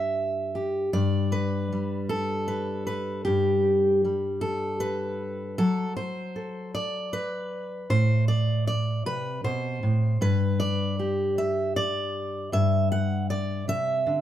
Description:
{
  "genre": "folk, solo fingerstyle acoustic guitar",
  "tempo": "52 BPM (dotted quarters)",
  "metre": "6/8",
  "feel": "straight",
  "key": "G major",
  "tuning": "A4 = 440 Hz",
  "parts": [
    { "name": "fingerpicked steel-string acoustic guitar", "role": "solo", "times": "0.0-14.2 s", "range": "G2 to F#5", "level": "-24 LUFS", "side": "equal", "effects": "none" }
  ],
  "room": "light reverb",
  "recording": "band playing live in one room",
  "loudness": "-24 LUFS",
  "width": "side -11 dB against mid",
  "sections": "0.9-14.2 A section",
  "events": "none",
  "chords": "0.0 N.C.; 5.6 D/F#; 7.9 Amadd9; 10.2 G"
}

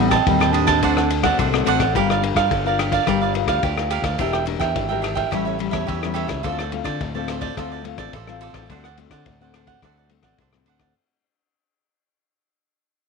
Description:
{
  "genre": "samba and choro",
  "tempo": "107 BPM",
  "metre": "4/4",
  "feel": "straight",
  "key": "unclear",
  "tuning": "A4 = 439 Hz",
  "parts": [
    { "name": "dark clarinet", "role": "second line", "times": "0.0-1.4 s", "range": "C4 to D4", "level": "-22 LUFS", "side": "right 12 dB", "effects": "none" },
    { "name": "cavaquinho", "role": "accompaniment", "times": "0.0-10.9 s", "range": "D4 to A5", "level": "-23 LUFS", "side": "right 13 dB", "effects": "none" },
    { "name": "nylon-string guitar", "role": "accompaniment", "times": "0.0-10.9 s", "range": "A2 to Bb4", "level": "-24 LUFS", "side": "left 14 dB", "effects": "none" },
    { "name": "growling fingered electric bass", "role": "bass", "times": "0.0-10.9 s", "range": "E1 to D3", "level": "-26 LUFS", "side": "equal", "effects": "overdrive" },
    { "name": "vintage drum kit", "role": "drums", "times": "0.1-10.9 s", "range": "kick drum, ride cymbal, rim click", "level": "-26 LUFS", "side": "left 6 dB", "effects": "none" }
  ],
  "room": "light reverb, small room reverb",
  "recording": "1960s-style stereo with parts hard left and right",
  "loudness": "-18 LUFS",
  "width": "side -4 dB against mid",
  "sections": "0.0-1.9 A section; 1.9-11.0 B section",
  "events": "clarinet solo 0.0-1.9; fade-out 1.9-11.0",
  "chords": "0.0 Am7b5; 0.8 D7; 1.9 Gm7; 4.2 Em7b5; 5.3 A7; 6.4 Dm7; 8.7 D7"
}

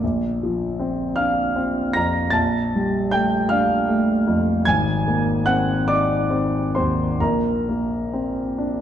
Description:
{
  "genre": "classical, impressionist solo piano",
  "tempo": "44-53 BPM (dotted quarters)",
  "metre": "6/8",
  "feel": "rubato",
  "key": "unclear",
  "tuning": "A4 = 440 Hz",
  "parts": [
    { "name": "warm grand piano", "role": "solo", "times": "0.0-8.8 s", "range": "Ab1 to Bb6", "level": "-18 LUFS", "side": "equal", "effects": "none" }
  ],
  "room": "moderate concert hall reverb, RT60 1.9 s",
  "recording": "dark, warm production",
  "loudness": "-18 LUFS",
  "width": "side -10 dB against mid",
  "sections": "0.0-8.8 A section",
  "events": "none",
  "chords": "0.0 Bbadd9; 2.3 Gm9/Bb; 4.7 Ab9; 7.2 Bbadd9"
}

